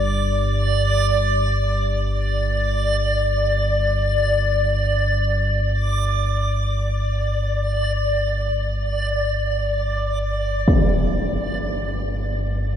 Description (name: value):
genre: dark ambient drone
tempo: free time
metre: none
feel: none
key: unclear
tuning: A4 = 442 Hz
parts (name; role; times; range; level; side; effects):
- deep rumbling drone; drone; 0.0-12.8 s; G1 to G2; -22 LUFS; equal; built-in reverb
- backwards swelling texture; texture; 0.0-10.7 s; D5; -22 LUFS; equal; built-in reverb, shimmer reverb
- impact; percussion; 10.7-10.9 s; none; -21 LUFS; equal; low-pass filter on sfx
room: wet huge ambient reverb, RT60 8.1 s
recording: none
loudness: -19 LUFS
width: side -9 dB against mid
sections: 0.0-10.7 A section; 10.7-12.8 B section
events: none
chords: 0.0 G5